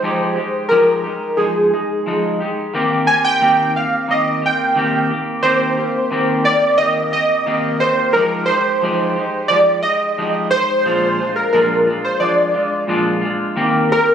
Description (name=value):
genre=indie pop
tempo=89 BPM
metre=4/4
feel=straight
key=unclear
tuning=A4 = 440 Hz
part: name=warm analog keys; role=melody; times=0.0-14.1 s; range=Ab4 to Ab5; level=-15 LUFS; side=right 1 dB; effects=ensemble chorus, slapback echo
part: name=clean electric guitar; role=accompaniment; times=0.0-14.1 s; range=Bb2 to G4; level=-19 LUFS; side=left 1 dB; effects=wide subtle chorus, warbly pitch drift
room=light reverb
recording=recorded on a phone in the room, club reverb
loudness=-14 LUFS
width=side -8 dB against mid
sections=0.0-13.6 A section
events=none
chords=0.0 Fm9; 2.7 Eb6; 8.1 Fm9; 10.9 Bb7; 13.6 Eb6